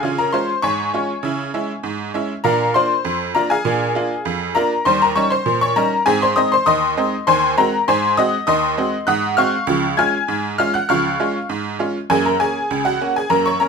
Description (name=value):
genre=ragtime piano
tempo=99 BPM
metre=2/4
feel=straight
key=Ab major, Db major from 7.3 s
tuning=A4 = 441 Hz
part: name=tack piano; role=solo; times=0.0-13.7 s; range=Db2 to Ab6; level=-16 LUFS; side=equal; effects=none
room=light reverb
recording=minimal, uncompressed stereo recording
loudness=-16 LUFS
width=side -5 dB against mid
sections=0.0-13.7 A section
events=none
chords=0.0 Db; 1.2 Dbm; 2.4 Bb7; 4.9 Eb7; 6.1 Ab; 7.3 Ab7/Eb; 9.7 Db; 12.1 Gb